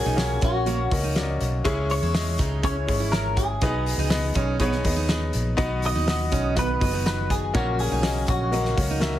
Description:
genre	piano-driven pop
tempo	122 BPM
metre	4/4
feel	straight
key	unclear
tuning	A4 = 441 Hz
part	clean electric guitar	melody	0.0-8.7 s	F#4 to D#5	-28 LUFS	equal	lush chorus
part	clear baby grand piano	accompaniment	0.0-9.2 s	A#2 to F#5	-28 LUFS	left 2 dB	none
part	vintage muted fingered electric bass	bass	0.0-9.2 s	F#1 to E2	-26 LUFS	equal	none
part	picked steel-string acoustic guitar	riff	0.1-9.1 s	A#3 to E4	-32 LUFS	right 7 dB	none
part	loose indie drum kit	drums	0.2-9.1 s	hi-hat, kick drum, snare drum	-27 LUFS	equal	none
part	mellow tonewheel organ	sustained chords	5.6-9.2 s	C#3 to B3	-35 LUFS	equal	none
room	light reverb, small room ambience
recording	heavily compressed radio sound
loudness	-21 LUFS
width	side -12 dB against mid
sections	0.0-9.2 A section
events	none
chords	0.0 F#/A#; 1.7 C#m; 3.6 G#m/B; 5.6 B; 7.5 F#/A#

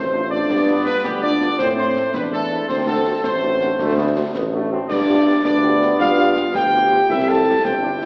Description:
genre	military-style march for wind band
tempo	109 BPM (dotted quarters)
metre	6/8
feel	straight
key	unclear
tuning	A4 = 443 Hz
part	dark trumpet section	melody	0.0-8.1 s	G4 to A5	-22 LUFS	equal	none
part	dark euphonium	second line	0.0-8.1 s	G3 to A4	-24 LUFS	equal	none
part	dark trombone section	sustained chords	0.0-8.1 s	G3 to E4	-29 LUFS	equal	none
part	mellow tuba	bass	0.0-8.1 s	G1 to A2	-25 LUFS	equal	none
part	warm French horn section	accompaniment	0.1-8.1 s	A3 to G4	-31 LUFS	equal	none
part	concert snare drum, clash cymbals and concert bass drum	drums	0.5-8.1 s	none	-35 LUFS	equal	none
room	wet scoring stage reverb, RT60 2.1 s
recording	heard from further back in the room, AM radio sound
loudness	-18 LUFS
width	mono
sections	0.0-8.1 A section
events	none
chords	0.5 G7; 1.6 Am; 2.7 D7; 4.9 G7; 7.1 C

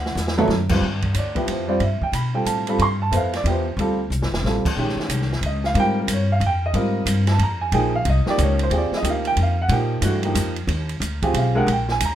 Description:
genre	modal jazz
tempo	182 BPM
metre	3/4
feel	swing 63% on 8ths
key	Eb major from 8.7 s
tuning	A4 = 440 Hz
part	upright bass	bass	0.0-12.2 s	F1 to B2	-22 LUFS	equal	none
part	open jazz drum kit	drums	0.1-12.1 s	crash cymbal, hi-hat, kick drum, ride cymbal, snare drum, toms	-27 LUFS	right 2 dB	none
part	dark baby grand piano	accompaniment	0.4-12.2 s	Eb3 to C6	-22 LUFS	right 1 dB	none
room	light reverb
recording	minimal, uncompressed stereo recording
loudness	-18 LUFS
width	side -11 dB against mid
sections	0.8-8.7 A section; 8.7-12.2 A section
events	drum fill 0.2-0.5, 4.1-4.4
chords	0.0 D9; 0.8 G9sus4; 4.8 Eb9sus4; 8.7 Ebmaj9

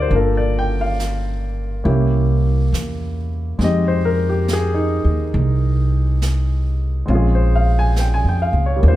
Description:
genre	jazz ballad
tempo	69 BPM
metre	4/4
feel	swing 67% on 8ths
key	unclear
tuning	A4 = 440 Hz
part	warm grand piano	accompaniment	0.0-9.0 s	G3 to Ab5	-21 LUFS	left 1 dB	none
part	upright bass	bass	0.0-9.0 s	G1 to F2	-17 LUFS	equal	none
part	jazz brush drum kit	drums	0.1-9.0 s	brushed snare drum, hi-hat, snare drum	-32 LUFS	right 3 dB	none
room	light reverb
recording	none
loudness	-16 LUFS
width	side -15 dB against mid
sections	0.0-9.0 A section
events	none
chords	0.1 Gm7; 1.9 C7b9; 3.6 Fm9; 7.1 Bbm7

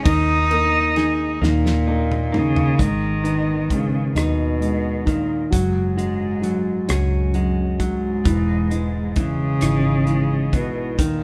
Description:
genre	six-eight pop ballad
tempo	44 BPM (dotted quarters)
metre	6/8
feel	straight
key	G# minor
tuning	A4 = 440 Hz
part	dark cello	melody	0.0-11.2 s	F#2 to D#4	-24 LUFS	equal	none
part	dark upright piano	accompaniment	0.0-11.2 s	D#3 to D#4	-27 LUFS	equal	none
part	direct-recorded clean electric guitar	arpeggios	0.0-11.2 s	D#3 to G#4	-30 LUFS	equal	none
part	vintage muted fingered electric bass	bass	0.1-11.2 s	E1 to D#2	-26 LUFS	equal	none
part	damped 70s drum kit	drums	0.1-11.2 s	hi-hat, kick drum, ride cymbal, rim click, snare drum, toms	-25 LUFS	equal	none
room	moderate stone room reverb, RT60 1.1 s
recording	band playing live in one room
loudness	-20 LUFS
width	mono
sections	0.0-2.8 A section; 2.8-11.2 B section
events	drum fill 1.4-2.8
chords	0.1 D#sus4; 2.8 G#m; 5.5 F#sus2; 8.2 C#madd9/E

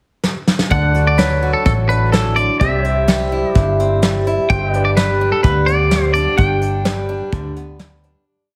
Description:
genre	honky-tonk and classic country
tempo	127 BPM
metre	4/4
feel	straight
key	G major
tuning	A4 = 440 Hz
part	soft brush drum kit	drums	0.2-8.1 s	hi-hat, kick drum, snare drum	-21 LUFS	equal	none
part	twangy electric guitar	melody	0.7-7.8 s	A4 to G5	-22 LUFS	equal	none
part	picked swing-style acoustic guitar	accompaniment	0.7-8.6 s	G2 to B4	-22 LUFS	equal	none
part	pedal steel guitar	sustained chords	0.7-8.2 s	G4 to F#5	-28 LUFS	equal	none
part	vintage muted fingered electric bass	bass	0.7-8.1 s	G1 to D2	-21 LUFS	equal	none
room	moderate recital hall reverb, RT60 1.7 s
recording	heavily compressed radio sound, multiband compression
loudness	-16 LUFS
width	mono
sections	0.0-0.7 pickup bar; 0.7-8.3 A section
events	drum fill 0.2-0.7; fade-out 6.4-8.3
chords	0.0 N.C.; 0.7 D; 2.6 C; 4.5 G

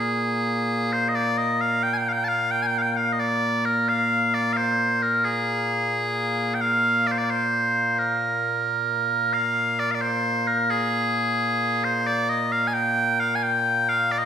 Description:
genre	scottish traditional, Scottish pipe music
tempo	88 BPM (dotted quarters)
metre	6/8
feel	straight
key	Bb mixolydian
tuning	A4 = 440 Hz
part	loud bright bagpipes	solo	0.0-14.3 s	Bb2 to A5	-21 LUFS	equal	none
room	wet recital hall reverb, RT60 1.4 s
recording	recorded in a church or concert hall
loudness	-21 LUFS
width	side -8 dB against mid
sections	0.0-9.3 A section; 9.3-14.3 A section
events	none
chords	none

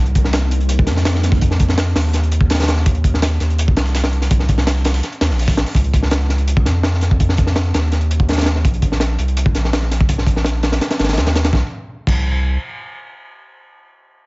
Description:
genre	drum and bass, jungle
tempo	166 BPM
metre	4/4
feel	straight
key	C phrygian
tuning	A4 = 439 Hz
part	soft string machine	sustained chords	0.1-2.8 s	G3 to Eb4	-29 LUFS	equal	phaser, ensemble chorus
part	saturated sub bass	bass	0.0-12.6 s	Ab1 to F2	-16 LUFS	equal	none
part	crunchy breakbeat drum kit	drums	0.1-12.2 s	crash cymbal, hi-hat, kick drum, snare drum	-17 LUFS	equal	none
part	breakbeat sampler-style drum kit	drums	0.2-5.7 s	hi-hat, snare drum	-30 LUFS	right 1 dB	overdrive, high-pass filter on hats, high-pass filter on snare, high-pass filter on room
room	small room reverb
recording	nothing above 7.6 kHz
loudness	-14 LUFS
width	side -26 dB against mid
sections	0.0-11.5 A section; 11.5-14.3 B section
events	filter sweep on string machine 0.0-2.9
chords	0.0 Cm7; 5.8 Db; 8.6 N.C.

